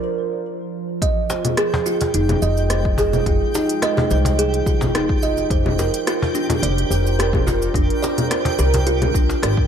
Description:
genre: organic downtempo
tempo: 107 BPM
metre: 4/4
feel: swing 53% on 16ths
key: F dorian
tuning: A4 = 440 Hz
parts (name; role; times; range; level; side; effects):
- warbly tape-like pad; sustained chords; 0.0-9.7 s; F3 to G5; -27 LUFS; right 1 dB; chorus, built-in reverb, vintage 12-bit sampler grit, sidechain pumping
- kalimba; arpeggios; 1.0-9.7 s; D4 to Eb5; -22 LUFS; right 2 dB; ping-pong delay
- deep house drum kit; drums; 1.0-9.6 s; congas, hi-hat, rim click, shaker; -24 LUFS; left 1 dB; none
- electronic kick drum; drums; 1.0-9.7 s; none; -21 LUFS; equal; none
- twinkling granular texture; texture; 1.7-9.7 s; G4 to G5; -30 LUFS; right 1 dB; built-in reverb
- cajon; percussion; 1.3-9.5 s; none; -27 LUFS; left 2 dB; none
- upright bass; bass; 2.1-9.7 s; F1 to C2; -21 LUFS; equal; sidechain pumping
room: light reverb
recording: dark, warm production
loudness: -17 LUFS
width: side -8 dB against mid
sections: 0.0-1.0 A section; 1.0-9.7 B section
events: break 0.0-1.0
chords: 0.0 Bbadd9/F; 1.0 Fm7; 5.5 Bbadd9/F

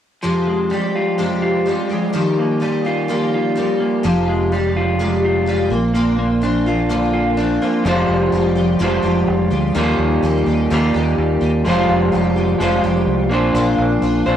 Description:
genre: rock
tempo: 126 BPM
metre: 4/4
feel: straight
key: F dorian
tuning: A4 = 440 Hz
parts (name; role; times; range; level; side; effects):
- picked twelve-string acoustic guitar; accompaniment; 0.2-14.4 s; F2 to G4; -20 LUFS; left 2 dB; ensemble chorus, cassette tape
- electric guitar through a small old amp; riff; 0.2-14.4 s; Eb3 to C5; -17 LUFS; right 1 dB; cassette tape
- fingered electric bass; bass; 4.0-14.4 s; F1 to Eb2; -21 LUFS; equal; none
room: wet studio reverb, RT60 0.6 s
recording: home recording on cassette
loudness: -15 LUFS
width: side -10 dB against mid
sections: 0.2-7.9 A section; 7.9-14.4 B section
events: none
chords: 0.2 Fmadd9; 2.1 Ebadd9; 4.0 Fmadd9; 5.7 Bbadd9; 7.9 Fmadd9; 9.8 Ebadd9; 11.7 Fmadd9; 13.3 Bbadd9

